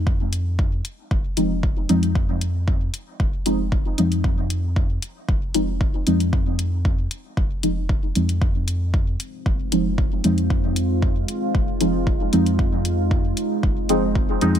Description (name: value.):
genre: dub techno.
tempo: 115 BPM.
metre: 4/4.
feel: straight.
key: F minor.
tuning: A4 = 440 Hz.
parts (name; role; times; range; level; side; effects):
soft dub sub bass; bass; 0.0-14.6 s; F1 to F2; -24 LUFS; equal; sidechain pumping.
electronic kick drum; drums; 0.1-14.3 s; none; -22 LUFS; equal; overdrive.
electronic hi-hat; drums; 0.3-14.6 s; none; -29 LUFS; left 3 dB; overdrive.
deep mellow chord stab; stabs; 1.4-14.5 s; F3 to Eb4; -22 LUFS; equal; chorus, phaser, sidechain pumping, dub echo.
deep dark ambient pad; sustained chords; 9.3-14.6 s; Ab3 to F4; -26 LUFS; right 1 dB; chorus, built-in reverb, sidechain pumping.
room: light reverb.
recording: none.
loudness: -19 LUFS.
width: side -10 dB against mid.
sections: 0.0-14.6 A section.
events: filter sweep on synth stab 0.0-14.6.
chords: 0.0 Fm7.